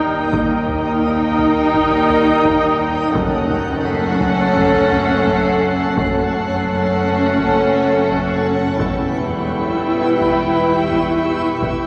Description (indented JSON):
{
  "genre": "cinematic, suspense film score",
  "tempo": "85 BPM",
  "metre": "4/4",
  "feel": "straight",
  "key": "unclear",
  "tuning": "A4 = 440 Hz",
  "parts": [
    { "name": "warm chamber violin section", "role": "melody", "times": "0.0-11.9 s", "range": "Gb5 to G5", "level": "-28 LUFS", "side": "equal", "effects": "none" },
    { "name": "warm symphonic violin section", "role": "second line", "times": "0.0-11.9 s", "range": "A4 to B4", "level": "-24 LUFS", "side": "equal", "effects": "none" },
    { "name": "dark symphonic viola section", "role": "accompaniment", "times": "0.0-11.9 s", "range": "Db4 to E4", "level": "-22 LUFS", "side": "equal", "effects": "none" },
    { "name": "backwards swelling texture", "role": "sustained chords", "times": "0.0-11.9 s", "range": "G4 to G5", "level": "-31 LUFS", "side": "equal", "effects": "built-in reverb" },
    { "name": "dark French horn section", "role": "sustained chords", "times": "0.0-11.9 s", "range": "G3 to Eb4", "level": "-26 LUFS", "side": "equal", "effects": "none" },
    { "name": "rich symphonic double bass section", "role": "bass", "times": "0.0-11.9 s", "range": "E1 to Eb2", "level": "-28 LUFS", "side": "equal", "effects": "none" },
    { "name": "warm symphonic cello section", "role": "bass", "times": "0.0-11.9 s", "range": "Eb2 to Gb2", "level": "-27 LUFS", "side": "equal", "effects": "none" },
    { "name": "concert harp", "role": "texture", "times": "0.0-7.8 s", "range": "G6 to Cb7", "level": "-38 LUFS", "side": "equal", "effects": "none" },
    { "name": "solo taiko drums", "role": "drums", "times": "0.3-11.9 s", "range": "none", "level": "-31 LUFS", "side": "equal", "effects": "none" },
    { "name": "dark chamber violin section", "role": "texture", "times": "3.2-11.9 s", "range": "G5 to C7", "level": "-34 LUFS", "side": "equal", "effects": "none" }
  ],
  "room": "wet cathedral reverb, RT60 5.0 s",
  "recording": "none",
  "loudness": "-17 LUFS",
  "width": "mono",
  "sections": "0.0-11.9 A section",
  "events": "none",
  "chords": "0.0 Eb; 3.1 Gbm; 8.8 Em"
}